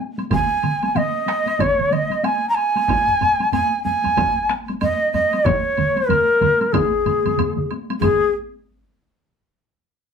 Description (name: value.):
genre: japanese traditional, taiko drum ensemble.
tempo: 94 BPM.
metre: 4/4.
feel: swing 60% on 16ths.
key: unclear.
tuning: A4 = 440 Hz.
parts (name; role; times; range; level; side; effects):
taiko ensemble; percussion; 0.2-8.3 s; none; -27 LUFS; left 2 dB; none.
woodblock; percussion; 0.2-8.3 s; none; -33 LUFS; right 2 dB; none.
mellow shakuhachi; melody; 0.3-8.3 s; Ab4 to Bb5; -18 LUFS; equal; none.
taiko ensemble; percussion; 0.3-8.6 s; none; -25 LUFS; right 3 dB; none.
taiko ensemble; percussion; 0.3-8.3 s; none; -25 LUFS; equal; none.
taiko ensemble; percussion; 2.9-8.6 s; none; -28 LUFS; right 2 dB; none.
room: moderate studio reverb, RT60 0.5 s.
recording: band playing live in one room.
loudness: -17 LUFS.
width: side -6 dB against mid.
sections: 0.0-8.0 A section; 8.0-10.1 B section.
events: none.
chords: none.